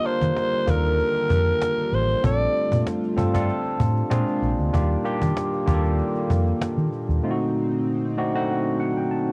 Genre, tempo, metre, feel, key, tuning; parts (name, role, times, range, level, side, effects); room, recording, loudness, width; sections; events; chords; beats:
polished 1980s jazz-funk pop; 96 BPM; 4/4; swing 54% on 16ths; A4 = 440 Hz
breathy alto saxophone; melody; 0.0-2.8 s; Bb4 to D5; -26 LUFS; equal; cassette tape
barky tine electric piano; accompaniment; 0.0-9.3 s; D3 to A5; -28 LUFS; equal; subtle chorus, cassette tape
chorused pulse-width pad; sustained chords; 0.0-9.3 s; Bb2 to G4; -31 LUFS; equal; cassette tape
cajon; drums; 0.0-7.2 s; -31 LUFS; equal; cassette tape
vintage muted fingered electric bass; bass; 0.2-7.2 s; A1 to Eb3; -25 LUFS; equal
moderate small room reverb, RT60 0.5 s; home recording on cassette; -23 LUFS; mono
0.0-9.3 A section
tine electric piano fill 7.9-9.3
0.0 Ebmaj7; 2.2 Bbmaj7; 4.1 Bb9; 4.7 Ebmaj7; 7.2 D7b9
0.36 0.99 1.61 | 2.24 2.86 3.49 4.11 | 4.74 5.36 5.99 6.61 | 7.24 7.87 8.49 9.12